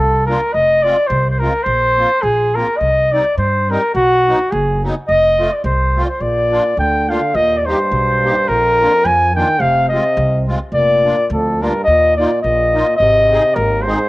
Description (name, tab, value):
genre	alpine folk, alpine dance band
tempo	106 BPM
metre	2/4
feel	swing 55% on 8ths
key	unclear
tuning	A4 = 441 Hz
part	warm flugelhorn	melody	0.0-14.1 s	F#4 to Ab5	-14 LUFS	equal	cassette tape
part	upright bass	bass	0.0-13.9 s	F1 to G2	-20 LUFS	equal	none
part	musette accordion	accompaniment	0.3-14.0 s	F#3 to Ab4	-24 LUFS	equal	cassette tape
part	clear euphonium	second line	6.2-14.1 s	Eb2 to F3	-22 LUFS	right 3 dB	cassette tape
room	moderate spring reverb, RT60 1.8 s, small room ambience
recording	home recording on cassette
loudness	-12 LUFS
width	side -19 dB against mid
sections	0.0-14.1 A section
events	none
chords	0.0 Bb; 0.5 Fm; 1.7 Bbsus2; 2.8 Cm; 4.0 B; 5.1 F; 6.2 Bb; 7.3 Eb; 8.5 Bb; 9.6 Fm; 10.7 Bb/F; 11.9 Ebsus2; 13.0 Ab